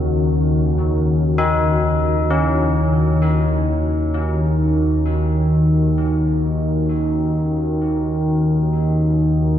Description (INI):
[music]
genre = dark ambient drone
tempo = free time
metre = none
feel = none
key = Eb minor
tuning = A4 = 442 Hz
[part]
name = deep dark ambient pad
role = sustained chords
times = 0.0-9.6 s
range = Eb3 to Bb4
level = -21 LUFS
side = equal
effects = chorus, built-in reverb
[part]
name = old church bells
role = arpeggios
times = 0.0-9.6 s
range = Db3 to Eb4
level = -24 LUFS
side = left 2 dB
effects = tape echo
[part]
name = analog drone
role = drone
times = 0.0-9.6 s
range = Eb2 to Eb3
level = -18 LUFS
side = equal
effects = chorus
[sound]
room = wet cathedral reverb, RT60 5.8 s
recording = dark, warm production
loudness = -16 LUFS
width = side -10 dB against mid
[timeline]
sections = 0.0-9.6 A section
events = none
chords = 0.0 Ebm